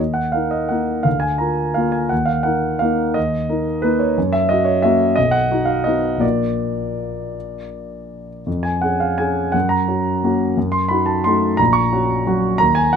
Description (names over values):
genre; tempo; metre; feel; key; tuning
classical, piano waltz; 158-189 BPM; 3/4; rubato; Eb minor, F# major from 8.5 s; A4 = 442 Hz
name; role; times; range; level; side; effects
warm grand piano; solo; 0.0-13.0 s; Bb1 to C#6; -16 LUFS; equal; none
room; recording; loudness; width
little or no reverb; close, detailed microphones; -16 LUFS; side -7 dB against mid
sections
0.0-13.0 A section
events
none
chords
0.0 Ebm; 1.1 Bb/D; 2.1 Ebm; 4.2 Gb7; 5.2 B; 6.2 Bb; 8.5 C#/E#; 9.5 F#; 10.6 F#dim7; 11.6 F#/A#